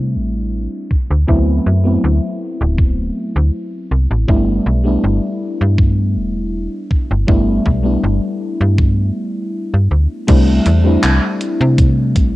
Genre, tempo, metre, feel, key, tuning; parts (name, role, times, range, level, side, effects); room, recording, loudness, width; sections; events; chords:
vaporwave; 80 BPM; 4/4; straight; G major; A4 = 439 Hz
mellow FM electric piano; accompaniment; 0.0-12.4 s; F#3 to E4; -18 LUFS; left 1 dB; wide subtle chorus, analog delay
slap-like FM bass; bass; 0.0-12.4 s; D1 to C3; -14 LUFS; equal
electronic kick drum; drums; 0.9-12.3 s; -14 LUFS; equal
gated 80s digital drum machine; drums; 10.3-12.3 s; crash cymbal, handclaps, hi-hat; -22 LUFS; right 1 dB; gated reverb
little or no reverb; cassette tape, low-pass filter; -13 LUFS; side -17 dB against mid
0.0-10.3 A section; 10.3-12.4 B section
filter sweep 0.0-10.3
0.0 C69; 0.9 D13; 4.3 G69; 10.3 C69